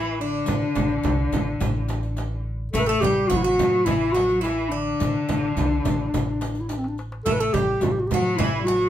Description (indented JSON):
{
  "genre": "Turkish makam ensemble",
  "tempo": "106 BPM",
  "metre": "4/4",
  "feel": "straight",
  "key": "A makam huseyni",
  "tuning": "A4 = 440 Hz",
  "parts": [
    { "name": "breathy clarinet", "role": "melody", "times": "0.0-8.9 s", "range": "C4 to B4-30c", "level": "-24 LUFS", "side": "left 1 dB", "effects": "none" },
    { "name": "Greek bouzouki", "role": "second line", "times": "0.0-8.9 s", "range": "D4 to A4", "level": "-32 LUFS", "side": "right 5 dB", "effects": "none" },
    { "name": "bright cello", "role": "second line", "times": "0.0-8.9 s", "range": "D3 to A3", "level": "-29 LUFS", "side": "left 3 dB", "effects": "none" },
    { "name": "upright bass", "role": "bass", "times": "0.0-8.9 s", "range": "A1 to A2", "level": "-28 LUFS", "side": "equal", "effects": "none" },
    { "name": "darbuka", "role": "percussion", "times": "0.5-8.9 s", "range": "none", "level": "-32 LUFS", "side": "left 2 dB", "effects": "none" },
    { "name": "frame drum", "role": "percussion", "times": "0.5-8.8 s", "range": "none", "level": "-29 LUFS", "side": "right 5 dB", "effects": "none" },
    { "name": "riq", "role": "percussion", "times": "0.5-8.9 s", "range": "none", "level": "-38 LUFS", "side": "left 6 dB", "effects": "none" }
  ],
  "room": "moderate studio reverb, RT60 0.6 s",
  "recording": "minimal, uncompressed stereo recording",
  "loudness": "-20 LUFS",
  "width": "side -11 dB against mid",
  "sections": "0.0-8.9 A section",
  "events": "drum fill 6.7-7.3",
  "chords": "none"
}